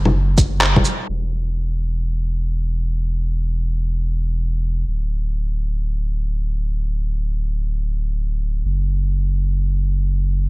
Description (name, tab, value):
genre	future garage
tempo	free time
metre	none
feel	none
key	unclear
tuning	A4 = 440 Hz
part	warm sub bass	bass	0.0-10.5 s	D1 to F#1	-19 LUFS	equal	sidechain pumping
part	electronic bongos, shaker and handclaps	drums	0.1-1.0 s	none	-19 LUFS	left 1 dB	small room reverb
part	electronic kick drum	drums	0.4-0.8 s	none	-18 LUFS	equal	overdrive, small room reverb
room	little or no reverb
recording	low-pass filter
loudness	-19 LUFS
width	side -24 dB against mid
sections	0.0-1.1 A section; 1.1-10.5 B section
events	band accent 0.6; filter sweep 1.1-10.5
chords	none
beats	free time